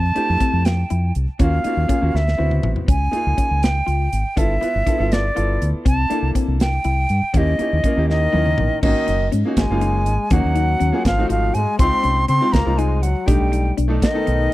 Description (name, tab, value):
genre	electric jazz fusion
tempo	81 BPM (dotted quarters)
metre	6/8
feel	straight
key	Ab mixolydian from 8.8 s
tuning	A4 = 441 Hz
part	silver concert flute	melody	0.0-14.5 s	D5 to C6	-22 LUFS	right 1 dB	none
part	clean electric guitar	stabs	0.0-14.5 s	C4 to F4	-27 LUFS	left 7 dB	analog chorus
part	deep dub fingered electric bass	bass	0.0-14.5 s	Gb1 to Db3	-19 LUFS	equal	none
part	bright baby grand piano	accompaniment	0.1-14.5 s	Ab3 to B4	-25 LUFS	right 1 dB	none
part	modern studio drum kit	drums	0.2-14.4 s	crash cymbal, hi-hat, kick drum, snare drum, toms	-21 LUFS	equal	none
part	bright trombone	second line	8.1-14.5 s	Eb3 to C4	-26 LUFS	left 5 dB	none
room	little or no reverb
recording	dry, close 1970s-style studio recording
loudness	-16 LUFS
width	side -16 dB against mid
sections	0.0-8.8 A section; 8.8-14.5 B section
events	drum fill 2.1-2.9, 8.1-8.8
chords	0.0 Fmaj7; 1.4 Ebm9; 2.1 D13; 2.9 Db69; 4.4 G13; 5.9 C13; 7.3 Eb7b9; 8.8 Ab9sus4; 10.3 Ebm7; 11.1 Ab7b9; 11.8 Dbmaj9; 13.3 B7alt